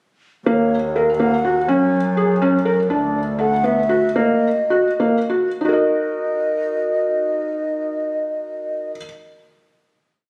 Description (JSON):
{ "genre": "contemporary instrumental, chamber music in an uneven meter", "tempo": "185-247 BPM (eighths)", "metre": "5/8", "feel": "straight", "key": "unclear", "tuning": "A4 = 436 Hz", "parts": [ { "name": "mellow baroque flute", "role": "melody", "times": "0.5-8.9 s", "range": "Db5 to Ab5", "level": "-25 LUFS", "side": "equal", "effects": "none" }, { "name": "felt-muted upright piano", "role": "arpeggios", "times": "0.5-9.0 s", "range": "Bb3 to Eb5", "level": "-21 LUFS", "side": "equal", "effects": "none" }, { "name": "rich double bass", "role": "bass", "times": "0.5-4.1 s", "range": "D2 to Gb2", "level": "-25 LUFS", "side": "equal", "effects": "none" } ], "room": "moderate scoring stage reverb, RT60 1.6 s", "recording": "recorded on a phone in the room, studio ambience, compression", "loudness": "-19 LUFS", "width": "mono", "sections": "0.5-5.6 A section; 5.6-8.8 final chord", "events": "slowing down 2.9-5.6", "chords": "0.5 Ebm7; 1.7 Gbsus2; 2.9 D; 4.2 Ebm" }